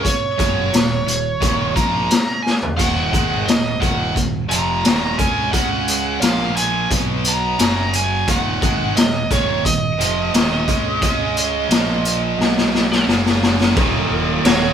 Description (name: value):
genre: hard rock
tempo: 88 BPM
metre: 4/4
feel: straight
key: Eb minor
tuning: A4 = 442 Hz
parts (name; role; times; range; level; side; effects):
- bluesy overdriven lead guitar; melody; 0.0-14.7 s; Db5 to Bb5; -22 LUFS; right 2 dB; distortion
- distorted electric guitar; riff; 0.0-14.7 s; Eb2 to Db4; -24 LUFS; right 8 dB; overdrive
- tight distorted guitar; riff; 0.0-14.7 s; Eb2 to Db4; -26 LUFS; left 6 dB; distortion
- modern bright picked electric bass; bass; 0.0-14.7 s; Eb1 to Db2; -26 LUFS; equal; none
- raw garage drum kit; drums; 0.0-14.6 s; crash cymbal, hi-hat, kick drum, snare drum, toms; -18 LUFS; left 1 dB; none
- sludgy distorted guitar; riff; 13.8-14.7 s; Eb2 to Eb4; -24 LUFS; right 1 dB; overdrive
- octave-fuzz lead guitar; second line; 14.5-14.7 s; Gb4; -25 LUFS; right 3 dB; distortion
room: moderate studio reverb, RT60 0.9 s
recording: band playing live in one room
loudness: -15 LUFS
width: side -8 dB against mid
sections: 0.0-13.8 A section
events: drum fill 2.4-2.8, 12.4-13.8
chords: 0.0 Ebm; 5.5 Db5; 6.2 Bb5; 6.9 B5; 7.6 Gb5; 8.3 Ebm; 11.0 Db5; 11.7 Bb5; 12.4 B5; 13.1 Gb5; 13.8 Ebm